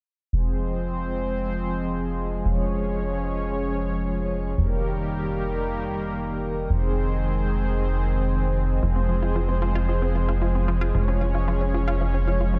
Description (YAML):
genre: synthwave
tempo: 113 BPM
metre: 4/4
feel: straight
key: F minor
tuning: A4 = 438 Hz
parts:
  - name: warm analog pad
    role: sustained chords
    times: 0.3-12.6 s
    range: Eb3 to Db5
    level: -29 LUFS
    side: equal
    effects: chorus, tremolo, shimmer reverb
  - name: chorused synth bass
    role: bass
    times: 0.3-12.6 s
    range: F1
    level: -27 LUFS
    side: equal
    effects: none
  - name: analog pluck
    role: arpeggios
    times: 8.8-12.6 s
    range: F3 to F4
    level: -33 LUFS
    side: equal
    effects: chorus, digital delay, shimmer reverb
room: light reverb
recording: dark, warm production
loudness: -25 LUFS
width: mono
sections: 0.3-12.6 A section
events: filter sweep on analog synth bass 0.3-12.6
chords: 0.3 Fm; 2.5 Db/F; 4.6 Eb/F; 6.7 Ab/F; 8.8 Fm; 10.9 Db/F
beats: | 0.33 0.86 1.39 1.92 | 2.46 2.99 3.52 4.05 | 4.58 5.11 5.64 6.17 | 6.70 7.23 7.76 8.29 | 8.83 9.36 9.89 10.42 | 10.95 11.48 12.01 12.54